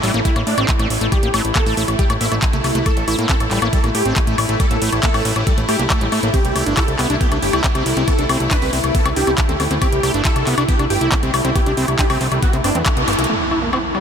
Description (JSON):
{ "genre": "psychedelic trance", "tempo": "138 BPM", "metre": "4/4", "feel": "straight", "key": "A minor", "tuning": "A4 = 440 Hz", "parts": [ { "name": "evolving wavetable pad", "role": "sustained chords", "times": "0.0-14.0 s", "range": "A3 to E4", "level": "-23 LUFS", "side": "equal", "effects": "phaser, built-in reverb, sidechain pumping" }, { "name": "screaming distorted acid line", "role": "riff", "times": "0.0-14.0 s", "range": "G3 to G4", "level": "-24 LUFS", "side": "equal", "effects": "distortion, chorus, auto-pan, sidechain pumping, diffuse ambient delay" }, { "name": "fat analog bass", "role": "bass", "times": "0.0-13.3 s", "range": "G1 to A2", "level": "-21 LUFS", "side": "equal", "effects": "none" }, { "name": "garage drum kit", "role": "drums", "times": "0.0-14.0 s", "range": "handclaps, hi-hat, woodblock", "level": "-22 LUFS", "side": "left 2 dB", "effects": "none" }, { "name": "supersaw stab", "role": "melody", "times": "0.3-12.8 s", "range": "D4 to B4", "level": "-25 LUFS", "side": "right 1 dB", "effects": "phaser, sidechain pumping, diffuse ambient delay" }, { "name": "electronic kick drum", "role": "drums", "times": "0.3-12.9 s", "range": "none", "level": "-18 LUFS", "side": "equal", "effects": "none" }, { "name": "impact", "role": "sound effects", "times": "13.3-14.0 s", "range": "none", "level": "-26 LUFS", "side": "equal", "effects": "none" } ], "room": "moderate huge ambient reverb, RT60 5.6 s", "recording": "dreamy mix soaked in reverb", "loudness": "-15 LUFS", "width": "side -7 dB against mid", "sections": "0.0-13.3 A section", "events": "band accent 12.9; drum fill 13.1; impact 13.3-14.0", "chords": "0.0 A5; 6.3 C5; 13.3 A5", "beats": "0.25 0.69 | 1.12 1.56 1.99 2.42 | 2.86 3.29 3.73 4.16 | 4.60 5.03 5.47 5.90 | 6.34 6.77 7.21 7.64 | 8.08 8.51 8.95 9.38 | 9.82 10.25 10.69 11.12 | 11.56 11.99 12.43 12.86 | 13.29 13.73" }